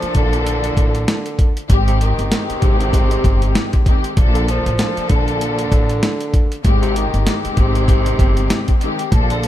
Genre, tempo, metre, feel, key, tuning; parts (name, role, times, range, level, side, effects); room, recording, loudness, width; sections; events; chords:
hip hop, boom-bap hip-hop; 97 BPM; 4/4; swing 58% on 16ths; A4 = 440 Hz
growling tenor saxophone; melody; 0.0-9.5 s; C3 to F3; -24 LUFS; right 2 dB; high-pass filter, low-pass filter, ping-pong delay
warm studio string section; accompaniment; 0.0-9.5 s; Eb3 to A4; -22 LUFS; left 3 dB; cassette tape, high-pass filter, low-pass filter
upright bass; bass; 0.0-9.5 s; G1 to Bb1; -19 LUFS; equal
boom bap sampler-style drum kit; drums; 0.0-9.5 s; hi-hat, kick drum, snare drum; -16 LUFS; equal; overdrive
little or no reverb; -14 LUFS; side -13 dB against mid
0.0-9.5 A section
0.0 Bbmaj7; 1.7 Abmaj7; 4.2 Bbmaj7; 6.6 Abmaj7